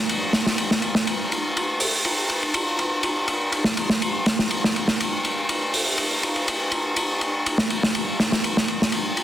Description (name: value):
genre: breakbeat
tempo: 122 BPM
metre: 4/4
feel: straight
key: none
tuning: none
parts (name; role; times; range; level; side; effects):
- crunchy breakbeat drum kit; drums; 0.1-9.2 s; hi-hat, ride cymbal, snare drum; -20 LUFS; equal; soft clipping on snare
room: moderate plate reverb, RT60 1.8 s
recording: dense, heavily limited modern master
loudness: -20 LUFS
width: side -12 dB against mid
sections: 0.0-9.2 A section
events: none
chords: none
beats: 0.08 0.57 | 1.06 1.56 2.05 2.54 | 3.03 3.52 4.02 4.51 | 5.00 5.49 5.98 6.47 | 6.97 7.46 7.95 8.44 | 8.93